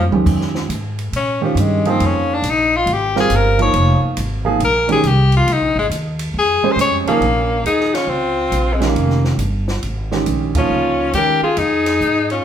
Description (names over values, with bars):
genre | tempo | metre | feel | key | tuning
modal jazz | 138 BPM | 4/4 | swing 66% on 8ths | Bb dorian | A4 = 441 Hz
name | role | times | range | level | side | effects
bright tenor saxophone | melody | 0.0-12.4 s | F3 to Db5 | -17 LUFS | left 3 dB | none
upright bass | bass | 0.0-12.4 s | F1 to Bb2 | -20 LUFS | equal | none
warm grand piano | accompaniment | 0.1-11.4 s | Eb3 to C5 | -20 LUFS | right 5 dB | none
compact cocktail drum kit | drums | 0.1-12.4 s | crash cymbal, hi-hat, kick drum, ride cymbal, snare drum, toms | -26 LUFS | right 1 dB | none
clear alto saxophone | second line | 7.1-12.4 s | C4 to Bb4 | -22 LUFS | right 2 dB | none
room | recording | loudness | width
wet large studio reverb, RT60 1.1 s | band playing live in one room | -14 LUFS | side -9 dB against mid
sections
0.0-7.2 A section; 7.2-12.4 B section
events
drum fill 0.0; tenor saxophone solo 0.0-7.2; band accent 10.5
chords
0.0 Bbm7